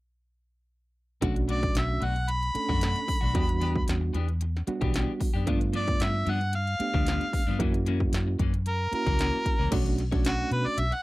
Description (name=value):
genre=straight-eighth soul blues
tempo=113 BPM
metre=4/4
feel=straight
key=B minor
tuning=A4 = 440 Hz
part: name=overdriven reed electric piano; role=accompaniment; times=1.2-10.8 s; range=G3 to A4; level=-32 LUFS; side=right 3 dB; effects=fast tremolo
part: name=clean electric guitar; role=stabs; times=1.2-11.0 s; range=F#2 to C#5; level=-36 LUFS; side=left 6 dB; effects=phaser
part: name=vintage muted fingered electric bass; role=bass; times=1.2-10.9 s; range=B1 to B2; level=-28 LUFS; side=equal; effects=none
part: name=industrial drum kit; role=drums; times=1.2-11.0 s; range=crash cymbal, hi-hat, kick drum, snare drum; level=-28 LUFS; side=equal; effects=none
part: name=warm harmonica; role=melody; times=1.5-11.0 s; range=F#4 to B5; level=-30 LUFS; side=equal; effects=overdrive
room=little or no reverb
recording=dry, close 1970s-style studio recording, faint mains hum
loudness=-24 LUFS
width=side -19 dB against mid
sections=1.2-9.7 A section; 9.7-11.0 B section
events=harmonica solo 9.7-11.0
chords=1.2 Bm7; 3.4 Em7; 5.5 G7; 7.6 F#7; 9.7 Bm9